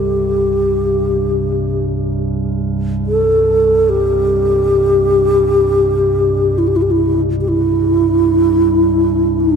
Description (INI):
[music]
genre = world meditative, free-time meditation music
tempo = free time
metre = none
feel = none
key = C major pentatonic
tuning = A4 = 441 Hz
[part]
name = mellow hollow bass flute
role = melody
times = 0.0-9.6 s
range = D4 to A4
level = -13 LUFS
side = equal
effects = tape echo
[part]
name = metallic inharmonic drone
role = drone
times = 0.0-9.6 s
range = C2 to G2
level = -18 LUFS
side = equal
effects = chorus, built-in reverb
[sound]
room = moderate church reverb, RT60 3.2 s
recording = dark, warm production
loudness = -12 LUFS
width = side -6 dB against mid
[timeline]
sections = 0.0-9.6 A section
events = none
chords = none